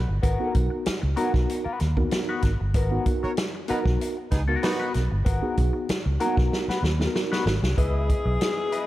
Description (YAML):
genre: funk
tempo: 95 BPM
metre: 4/4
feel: straight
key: G# minor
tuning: A4 = 439 Hz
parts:
  - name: vintage muted fingered electric bass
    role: bass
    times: 0.0-8.4 s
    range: G1 to D#2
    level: -25 LUFS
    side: equal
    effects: none
  - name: clean electric guitar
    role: accompaniment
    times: 0.1-8.9 s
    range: B3 to D#5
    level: -32 LUFS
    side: left 4 dB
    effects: wah, spring reverb
  - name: vintage drum kit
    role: drums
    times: 0.2-8.9 s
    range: hi-hat, kick drum, snare drum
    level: -26 LUFS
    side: equal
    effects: none
  - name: mellow tine electric piano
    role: stabs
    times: 0.4-7.6 s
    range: A#3 to A#4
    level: -29 LUFS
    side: right 1 dB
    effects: medium stereo tremolo, slapback echo
  - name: clear horn section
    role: second line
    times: 3.2-4.9 s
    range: B3 to C#5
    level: -33 LUFS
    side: right 2 dB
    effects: tube saturation
  - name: breathy alto saxophone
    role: melody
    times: 7.8-8.9 s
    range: G#4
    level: -28 LUFS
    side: left 3 dB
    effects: slapback echo
  - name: tonewheel organ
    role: sustained chords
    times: 7.8-8.9 s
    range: B3 to D#5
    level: -36 LUFS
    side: equal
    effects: slow rotary speaker
room: little or no reverb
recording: none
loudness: -22 LUFS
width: side -15 dB against mid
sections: 0.0-7.8 A section; 7.8-8.9 B section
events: drum fill 6.5-7.8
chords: 0.0 G#m9; 7.8 C#m9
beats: | 0.23 0.86 1.49 2.12 | 2.75 3.38 4.00 4.63 | 5.26 5.89 6.52 7.15 | 7.78 8.41